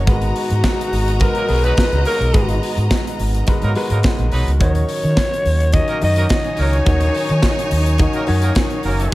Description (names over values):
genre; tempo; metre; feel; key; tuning
disco; 106 BPM; 4/4; straight; unclear; A4 = 440 Hz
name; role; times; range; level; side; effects
clear studio string section; second line; 0.0-9.1 s; D#4 to A#5; -26 LUFS; left 1 dB; none
warm concert grand piano; accompaniment; 0.0-9.1 s; D#3 to D#5; -25 LUFS; left 2 dB; none
mellow tonewheel organ; sustained chords; 0.0-9.1 s; D#3 to F#4; -29 LUFS; right 1 dB; chorus vibrato, slow rotary speaker
overdriven fingered electric bass; bass; 0.0-9.0 s; F#1 to D#3; -17 LUFS; equal; none
breathy alto saxophone; melody; 0.1-7.7 s; F#4 to D#5; -22 LUFS; left 1 dB; none
modern studio drum kit; drums; 0.1-9.1 s; hi-hat, kick drum, snare drum; -19 LUFS; equal; gated reverb
clear horn section; stabs; 1.4-9.1 s; F#3 to B4; -27 LUFS; right 2 dB; none
room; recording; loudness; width
studio reverb; none; -14 LUFS; side -18 dB against mid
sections
0.0-9.1 A section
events
none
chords
0.1 G#m9; 4.6 D#m7